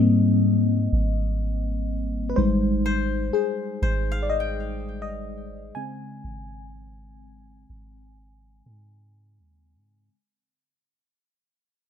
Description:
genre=contemporary R&B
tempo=62 BPM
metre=4/4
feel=straight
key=Ab major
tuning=A4 = 440 Hz
part: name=mellow FM electric piano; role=accompaniment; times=0.0-10.1 s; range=Db3 to Ab5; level=-24 LUFS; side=left 3 dB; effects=chorus, phaser
part: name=soft 808-style bass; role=bass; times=0.0-10.1 s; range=Ab1 to Ab2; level=-25 LUFS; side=right 1 dB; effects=none
part: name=koto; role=texture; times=2.9-6.7 s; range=C5 to G5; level=-34 LUFS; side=left 3 dB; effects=digital delay
room=light reverb, small room ambience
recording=none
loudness=-22 LUFS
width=side -8 dB against mid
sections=0.0-10.1 A section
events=fade-out 0.0-10.1; FM electric piano solo 0.0-10.1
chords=0.0 Abmaj7; 2.4 Fm7/Ab; 5.8 Abadd11

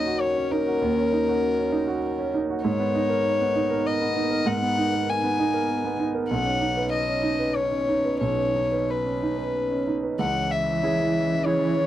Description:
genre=neoclassical piano and strings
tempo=88-100 BPM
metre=3/4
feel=rubato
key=C# dorian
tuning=A4 = 440 Hz
part: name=rich violin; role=melody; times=0.0-11.9 s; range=A#4 to G#5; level=-25 LUFS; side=left 4 dB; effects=none
part: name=clear concert grand piano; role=accompaniment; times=0.0-11.9 s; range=B1 to B4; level=-25 LUFS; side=right 4 dB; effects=none
part: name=chorused pulse-width pad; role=sustained chords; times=0.0-11.9 s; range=B3 to C#5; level=-31 LUFS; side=equal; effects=none
part: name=dark cello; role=second line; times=10.2-11.9 s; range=E3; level=-27 LUFS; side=right 3 dB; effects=none
room=little or no reverb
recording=dry, close 1970s-style studio recording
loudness=-22 LUFS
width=side -12 dB against mid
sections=0.0-10.2 A section; 10.2-11.9 B section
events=none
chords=0.0 D#m7; 2.6 G#madd9; 6.3 Badd9; 10.2 C#m

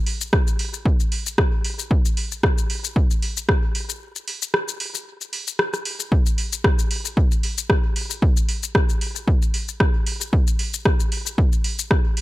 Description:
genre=techno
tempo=114 BPM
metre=4/4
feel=swing 55% on 16ths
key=none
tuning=none
part: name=soft vintage rhythm box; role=drums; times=0.1-12.2 s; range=hi-hat, rim click, shaker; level=-24 LUFS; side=left 1 dB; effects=none
part: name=electronic kick drum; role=drums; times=0.3-12.0 s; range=none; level=-19 LUFS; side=equal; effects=none
room=little or no reverb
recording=none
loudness=-19 LUFS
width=side -18 dB against mid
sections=0.0-12.2 A section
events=break 4.0-6.1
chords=none

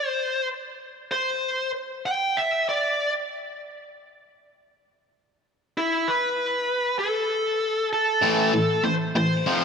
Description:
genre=rock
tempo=97 BPM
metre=4/4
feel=straight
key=unclear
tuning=A4 = 439 Hz
part: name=high-gain lead guitar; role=melody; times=0.0-9.6 s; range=E4 to G5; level=-23 LUFS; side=equal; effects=distortion
part: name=biting overdriven guitar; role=riff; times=8.2-9.6 s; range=F2 to A3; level=-21 LUFS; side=equal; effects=none
room=wet lush hall reverb, RT60 2.9 s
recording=big arena sound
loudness=-22 LUFS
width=side -6 dB against mid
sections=0.0-8.2 A section; 8.2-9.6 B section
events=none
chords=0.0 N.C.; 8.2 A5

